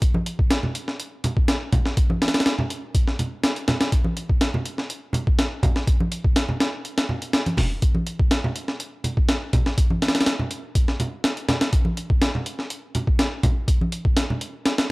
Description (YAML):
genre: breakbeat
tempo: 123 BPM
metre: 4/4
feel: straight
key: none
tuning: none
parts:
  - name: breakbeat sampler-style drum kit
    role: drums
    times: 0.0-14.9 s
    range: hi-hat, kick drum, snare drum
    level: -20 LUFS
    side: equal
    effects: small room ambience
  - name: congas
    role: percussion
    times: 0.1-14.4 s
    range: none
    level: -26 LUFS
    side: right 1 dB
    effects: none
room: light reverb, digital ambience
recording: dry, gritty hardware recording, cassette tape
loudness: -20 LUFS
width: side -24 dB against mid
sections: 0.0-14.9 A section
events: none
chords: none